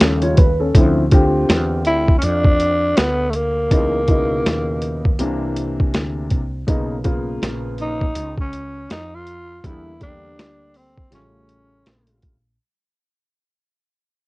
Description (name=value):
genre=hip hop, jazz-hop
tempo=81 BPM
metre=4/4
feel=swing 60% on 16ths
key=unclear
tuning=A4 = 440 Hz
part: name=dark grand piano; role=accompaniment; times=0.0-12.3 s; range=B2 to C#5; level=-21 LUFS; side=left 1 dB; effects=none
part: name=woody fretless electric bass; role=bass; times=0.0-12.6 s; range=A1 to F2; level=-24 LUFS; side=equal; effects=lush chorus
part: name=boom bap sampler-style drum kit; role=drums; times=0.0-12.4 s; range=hi-hat, kick drum, snare drum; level=-16 LUFS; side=equal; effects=cassette tape
part: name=growling tenor saxophone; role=melody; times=1.9-12.2 s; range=A3 to F4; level=-21 LUFS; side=equal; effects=cassette tape
room=little or no reverb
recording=home recording on cassette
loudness=-16 LUFS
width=side -22 dB against mid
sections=0.7-12.6 A section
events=fade-out 0.7-12.6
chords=0.0 A7b13; 0.7 Dm9; 3.7 C#m9; 5.2 C9; 6.7 Bmaj9; 9.6 Em7b5; 11.1 A7b13